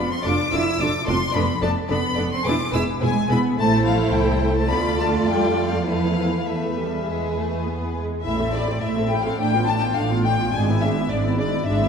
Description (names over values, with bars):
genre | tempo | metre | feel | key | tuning
quick classical-period movement for string orchestra | 106 BPM | 4/4 | rubato | A minor | A4 = 444 Hz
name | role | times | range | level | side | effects
rich chamber violin section | melody | 0.0-11.9 s | D5 to E6 | -26 LUFS | left 6 dB | none
rich chamber violin section | second line | 0.0-11.9 s | G#4 to A5 | -27 LUFS | left 2 dB | none
warm chamber viola section | accompaniment | 0.0-11.9 s | G3 to A4 | -25 LUFS | right 1 dB | none
dark studio cello section | bass | 0.0-11.9 s | G#2 to E4 | -26 LUFS | right 2 dB | none
warm chamber double bass section | bass | 0.0-11.9 s | E1 to F2 | -25 LUFS | right 2 dB | none
room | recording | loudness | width
wet scoring stage reverb, RT60 1.7 s | heard from further back in the room | -19 LUFS | side -6 dB against mid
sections
0.0-8.3 A section; 8.3-11.9 B section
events
none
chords
0.0 Dm/F; 1.3 Bm7b5/F; 2.5 E; 3.6 Am; 4.7 Dm; 5.9 Esus4; 7.1 E; 8.3 Am; 9.4 Bm7b5/A; 10.5 E7/G#